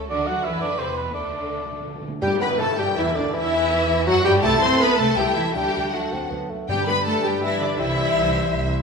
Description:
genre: classical, dramatic, fast romantic movement for symphony orchestra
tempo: 157-178 BPM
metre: 3/4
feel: rubato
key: G major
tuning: A4 = 440 Hz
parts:
  - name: warm symphonic violin section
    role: melody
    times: 0.0-8.7 s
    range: G3 to C6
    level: -26 LUFS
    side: left 3 dB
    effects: none
  - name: warm symphonic violin section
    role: second line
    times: 0.0-8.7 s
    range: D4 to C5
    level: -30 LUFS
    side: left 3 dB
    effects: none
  - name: warm studio double bass section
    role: bass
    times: 0.0-8.8 s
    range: C2 to B2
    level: -30 LUFS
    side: right 2 dB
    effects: none
  - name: dark cor anglais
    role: second line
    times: 0.1-8.8 s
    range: A4 to A5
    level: -30 LUFS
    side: right 2 dB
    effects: none
  - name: warm symphonic viola section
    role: accompaniment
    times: 0.1-8.7 s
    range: B3 to C5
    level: -28 LUFS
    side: equal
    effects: none
  - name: warm symphonic cello section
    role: bass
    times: 0.1-8.7 s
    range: B2 to C4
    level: -28 LUFS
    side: right 2 dB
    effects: none
  - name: timpani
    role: percussion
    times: 1.2-2.7, 6.7-7.2 s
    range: G2 to D3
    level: -34 LUFS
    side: left 1 dB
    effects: none
  - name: mellow clarinet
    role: second line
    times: 2.2-8.8 s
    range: D4 to B4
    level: -29 LUFS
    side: left 1 dB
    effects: none
  - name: mellow hollow flute section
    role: second line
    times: 2.2-8.7 s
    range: D5 to C6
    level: -29 LUFS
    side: left 3 dB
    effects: none
  - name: warm bassoon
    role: accompaniment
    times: 2.2-8.8 s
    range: D3 to C4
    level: -28 LUFS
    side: right 2 dB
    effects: none
  - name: warm French horn section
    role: sustained chords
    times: 2.2-7.9 s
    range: D3 to E4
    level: -31 LUFS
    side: left 3 dB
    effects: none
  - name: tam-tam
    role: percussion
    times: 2.2-3.7 s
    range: none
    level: -37 LUFS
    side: left 1 dB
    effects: none
room: wet scoring stage reverb, RT60 1.6 s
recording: minimal, uncompressed stereo recording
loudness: -19 LUFS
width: side -5 dB against mid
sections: 0.0-2.2 A section; 2.2-8.8 B section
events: timpani fill 1.1-2.2; band accent 2.2-2.6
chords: 0.1 D; 0.8 Em; 1.1 D5; 2.2 G; 3.3 Emadd9; 4.4 Am/C; 5.2 A7; 5.5 D; 6.7 G; 7.8 C

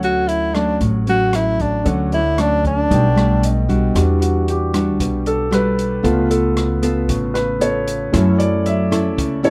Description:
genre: bossa nova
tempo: 115 BPM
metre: 4/4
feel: straight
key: unclear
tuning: A4 = 440 Hz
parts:
  - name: mellow tenor saxophone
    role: melody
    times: 0.0-3.7 s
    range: D4 to F#4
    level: -20 LUFS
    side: equal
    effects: none
  - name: nylon-string guitar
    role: accompaniment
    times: 0.0-9.5 s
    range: A2 to A4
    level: -23 LUFS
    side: equal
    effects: none
  - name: warm concert grand piano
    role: accompaniment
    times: 0.0-9.5 s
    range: G3 to G5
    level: -23 LUFS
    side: equal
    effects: none
  - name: upright bass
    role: bass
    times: 0.0-9.5 s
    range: A1 to F#2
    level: -23 LUFS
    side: equal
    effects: none
  - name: open jazz drum kit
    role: drums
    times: 0.0-9.5 s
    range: hi-hat, kick drum, rim click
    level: -29 LUFS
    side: equal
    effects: none
room: moderate studio reverb, RT60 0.5 s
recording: none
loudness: -17 LUFS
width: mono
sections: 0.0-4.0 A section; 4.0-9.5 B section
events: grand piano fill 3.2-4.0; grand piano solo 4.0-9.5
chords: 0.0 Dmaj7; 2.9 B7alt; 4.0 Em9; 6.0 C#aug7; 8.1 F#m7

